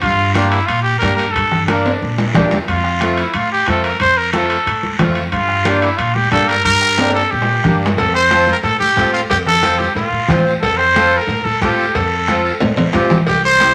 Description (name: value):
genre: latin, cumbia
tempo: 181 BPM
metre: 4/4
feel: straight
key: F major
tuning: A4 = 440 Hz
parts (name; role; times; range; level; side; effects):
- growling trumpet; melody; 0.0-13.7 s; D4 to C5; -17 LUFS; equal; none
- upright bass; bass; 0.0-13.7 s; C2 to Bb2; -24 LUFS; equal; none
- bombo; percussion; 0.0-13.7 s; none; -30 LUFS; equal; none
- congas; percussion; 0.0-13.7 s; none; -23 LUFS; equal; none
- guiro; percussion; 0.0-13.7 s; none; -29 LUFS; equal; none
- timbales and cowbell; percussion; 0.0-13.7 s; none; -25 LUFS; equal; none
- accordion; accompaniment; 0.4-13.7 s; A3 to C5; -23 LUFS; equal; none
room: wet studio reverb, RT60 1.0 s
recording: none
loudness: -15 LUFS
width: mono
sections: 0.0-8.0 A section; 8.0-13.7 B section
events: drum fill 1.9-2.7, 7.0-8.0, 12.3-13.3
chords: 0.0 Gm; 2.7 F; 5.3 Gm; 8.0 F